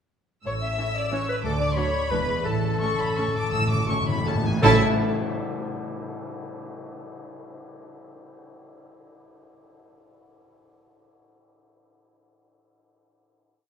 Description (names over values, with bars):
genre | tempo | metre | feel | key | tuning
classical, orchestral ballroom waltz | 159-196 BPM | 3/4 | rubato | A major | A4 = 440 Hz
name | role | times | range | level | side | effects
rich studio violin section | melody | 0.5-4.8 s | E5 to E6 | -30 LUFS | left 2 dB | none
rich studio violin section | second line | 0.5-4.8 s | A4 to A5 | -31 LUFS | right 1 dB | none
warm clarinet | second line | 0.5-4.8 s | A4 to E5 | -28 LUFS | left 1 dB | none
concert harp | arpeggios | 0.5-5.7 s | A2 to E5 | -32 LUFS | left 5 dB | none
rich studio double bass section | bass | 0.5-4.8 s | E1 to D2 | -31 LUFS | right 4 dB | none
warm studio cello section | bass | 0.5-4.8 s | D2 to A2 | -30 LUFS | right 3 dB | none
rich studio viola section | accompaniment | 0.8-4.8 s | E3 to E4 | -29 LUFS | right 1 dB | none
cymbal swell and tam-tam | percussion | 2.4-6.0 s | none | -36 LUFS | left 2 dB | none
timpani | percussion | 2.5-4.8 s | A2 | -28 LUFS | equal | none
room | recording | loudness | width
wet scoring stage reverb, RT60 1.9 s | minimal, uncompressed stereo recording | -22 LUFS | side -7 dB against mid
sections
0.5-4.6 A section; 4.6-5.7 final chord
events
timpani fill 2.5-4.6; band accent 4.6-5.0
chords
0.5 A; 1.4 D5; 2.1 E7; 2.5 A